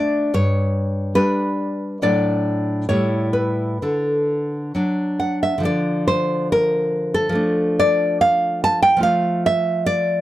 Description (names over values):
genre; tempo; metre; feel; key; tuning
romantic piece for solo classical guitar; 63-76 BPM; 2/4; rubato; D major, D minor from 5.6 s; A4 = 441 Hz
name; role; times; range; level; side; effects
nylon-string guitar; solo; 0.0-10.2 s; G2 to A5; -17 LUFS; equal; none
room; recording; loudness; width
little or no reverb; dry, close 1970s-style studio recording; -17 LUFS; side -14 dB against mid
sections
0.0-5.6 A section; 5.6-10.2 B section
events
none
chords
0.3 G; 2.0 D/A; 2.9 A7; 3.8 D; 5.6 Dm; 7.4 Dm/F; 9.0 F